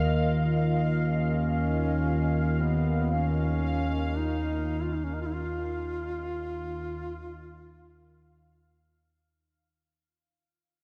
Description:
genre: dark ambient drone.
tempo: free time.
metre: none.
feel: none.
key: unclear.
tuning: A4 = 440 Hz.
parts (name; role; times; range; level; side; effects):
dark analog pad; sustained chords; 0.0-9.4 s; F4 to Eb5; -38 LUFS; equal; chorus.
analog drone; drone; 0.0-9.4 s; Eb2 to Eb3; -30 LUFS; equal; chorus.
bubbling stepped-filter texture; texture; 0.0-9.4 s; F5; -39 LUFS; equal; chorus, built-in reverb.
mellow duduk; melody; 1.1-8.8 s; Cb4 to F4; -36 LUFS; equal; delay.
room: wet huge ambient reverb, RT60 8.7 s.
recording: none.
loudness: -28 LUFS.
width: mono.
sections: 0.0-9.3 A section.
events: fade-in on duduk 0.0-9.3; fade-out on analog synth pad 0.0-9.3; fade-out 3.8-9.3.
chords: 0.0 Ebsus2.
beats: free time.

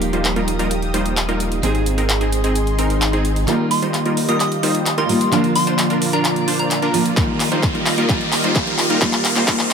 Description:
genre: EDM, festival progressive house.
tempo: 130 BPM.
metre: 4/4.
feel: straight.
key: Eb major.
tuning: A4 = 439 Hz.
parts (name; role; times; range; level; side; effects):
fingerpicked steel-string acoustic guitar; accompaniment; 0.0-9.7 s; D3 to Ab4; -22 LUFS; right 2 dB; sidechain pumping, ping-pong delay.
lush unison pad; sustained chords; 0.0-9.7 s; Bb3 to Eb6; -26 LUFS; left 2 dB; chorus, phaser, sidechain pumping.
supersaw stab; riff; 0.0-9.7 s; G3 to C5; -21 LUFS; equal; sidechain pumping, low-pass filter, ping-pong delay.
saturated sub bass; bass; 0.0-3.5 s; Eb1 to Ab1; -22 LUFS; equal; sidechain pumping.
big-room dance drum kit; drums; 0.0-9.7 s; handclaps, hi-hat; -22 LUFS; equal; none.
swell and riser; sound effects; 2.7-9.7 s; none; -26 LUFS; left 2 dB; none.
soft synth bell; melody; 3.7-7.1 s; Bb5 to Eb6; -24 LUFS; left 1 dB; chorus, phaser, ping-pong delay.
electronic kick drum; drums; 7.2-9.6 s; none; -21 LUFS; equal; none.
room: light reverb, digital ambience.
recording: high-pass filter.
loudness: -15 LUFS.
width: side -6 dB against mid.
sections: 0.0-3.5 A section; 3.5-9.7 B section.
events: swell 2.7-3.5; build-up 3.5-9.7; drum fill 3.5-9.7; riser 3.5-9.7; filter sweep on supersaw synth 3.5-9.7; filter sweep 3.5-9.7.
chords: 0.0 Ebadd9; 1.6 Ab; 3.5 Ebadd9; 5.3 Bb; 7.2 Eb69.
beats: 0.25 0.71 1.17 | 1.63 2.09 2.56 3.02 | 3.48 3.94 4.40 4.86 | 5.33 5.79 6.25 6.71 | 7.17 7.63 8.09 8.56 | 9.02 9.48.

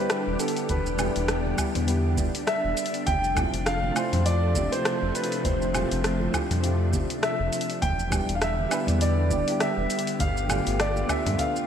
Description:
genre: sunset chillout.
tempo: 101 BPM.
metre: 4/4.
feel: swing 57% on 16ths.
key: F lydian.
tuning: A4 = 440 Hz.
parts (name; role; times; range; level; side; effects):
dark baby grand piano; melody; 0.0-11.7 s; A4 to G5; -29 LUFS; equal; lush chorus, digital delay.
soft electric-piano-like synth keys; accompaniment; 0.0-11.7 s; G3 to C5; -32 LUFS; right 1 dB; chorus, auto-pan, digital delay.
soft string machine; sustained chords; 0.0-11.7 s; C3 to G4; -30 LUFS; left 1 dB; ensemble chorus.
deep house drum kit; drums; 0.1-11.7 s; hi-hat, rim click, shaker, woodblock; -31 LUFS; equal; overdrive.
round analog bass; bass; 0.3-11.4 s; E1 to G2; -27 LUFS; equal; none.
electronic kick drum; drums; 0.7-11.5 s; none; -30 LUFS; equal; none.
congas; percussion; 0.7-11.4 s; none; -36 LUFS; right 2 dB; none.
room: moderate lush hall reverb, RT60 2.5 s.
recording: bright 1980s-style digital production.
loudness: -23 LUFS.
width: side -8 dB against mid.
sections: 0.0-11.7 A section.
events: none.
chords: 0.0 Em7; 3.1 Fmaj7; 7.8 Em7; 10.2 G9.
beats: 0.10 | 0.69 1.29 1.88 2.48 | 3.07 3.67 4.26 4.85 | 5.45 6.04 6.63 7.23 | 7.82 8.42 9.01 9.61 | 10.20 10.79 11.39.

